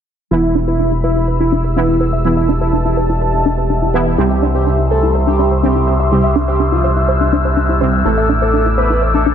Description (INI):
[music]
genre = techno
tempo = 124 BPM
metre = 4/4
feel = straight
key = E minor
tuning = A4 = 440 Hz
[part]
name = wide unison lead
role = melody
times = 0.3-9.3 s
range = E4 to B4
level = -19 LUFS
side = right 1 dB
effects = ping-pong delay
[part]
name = dark analog pad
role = sustained chords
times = 0.3-9.3 s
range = G4 to E6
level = -20 LUFS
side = equal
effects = chorus
[part]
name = tight sequenced synth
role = arpeggios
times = 0.3-9.3 s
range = D4 to E5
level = -20 LUFS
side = left 1 dB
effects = chorus, tape echo
[part]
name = synth brass stab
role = stabs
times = 0.3-9.3 s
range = A2 to E4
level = -20 LUFS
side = right 2 dB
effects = chorus, tape echo
[part]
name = gritty driven synth bass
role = bass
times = 0.3-9.3 s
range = E1 to C2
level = -16 LUFS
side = equal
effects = none
[part]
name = overtone-sweeping drone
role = drone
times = 1.3-9.3 s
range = E2 to B2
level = -24 LUFS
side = left 1 dB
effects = chorus, built-in reverb
[sound]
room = light reverb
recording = none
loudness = -12 LUFS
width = side -8 dB against mid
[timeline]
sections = 0.3-9.3 A section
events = none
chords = 0.3 Em; 4.2 C; 8.1 Asus4